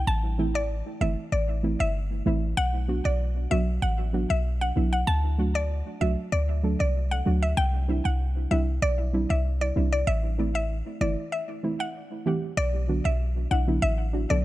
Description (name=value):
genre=dancehall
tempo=96 BPM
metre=4/4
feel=straight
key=B phrygian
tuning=A4 = 436 Hz
part: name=warm 808-style bass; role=bass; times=0.0-14.4 s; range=G1 to D2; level=-25 LUFS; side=equal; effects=none
part: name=mallet-like synth pluck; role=melody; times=0.1-14.4 s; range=D5 to A5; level=-30 LUFS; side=left 1 dB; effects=chorus, analog delay
part: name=soft round pluck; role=accompaniment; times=0.4-14.4 s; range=D3 to A4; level=-30 LUFS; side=right 2 dB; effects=chorus, analog delay
room=digital ambience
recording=echo-heavy mix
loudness=-24 LUFS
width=side -16 dB against mid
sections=0.0-12.6 A section; 12.6-14.4 B section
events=break 11.3-12.6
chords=0.1 Am; 2.6 Bm; 5.1 D; 7.6 Cadd9; 10.1 Am; 12.6 Bm